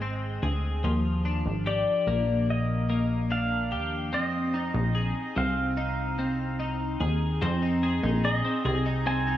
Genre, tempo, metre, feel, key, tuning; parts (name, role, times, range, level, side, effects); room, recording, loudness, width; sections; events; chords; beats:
dream pop; 73 BPM; 4/4; straight; F dorian; A4 = 440 Hz
pedal steel guitar; melody; 0.0-9.4 s; D5 to Ab5; -30 LUFS; equal; shimmer reverb, analog delay
twelve-string electric guitar; arpeggios; 0.0-9.4 s; F3 to Ab4; -29 LUFS; left 2 dB; analog chorus, shimmer reverb, analog delay
plucky analog bass; bass; 0.0-9.4 s; Ab1 to F2; -28 LUFS; equal
moderate spring reverb, RT60 2.3 s; echo-heavy mix, small room ambience; -25 LUFS; side -12 dB against mid
0.0-7.4 A section; 7.4-9.4 B section
0.0 Fm7 (rootless); 0.8 Ebmaj9; 4.1 Fm7
0.02 | 0.84 1.67 2.49 3.31 | 4.13 4.95 5.78 6.60 | 7.42 8.24 9.06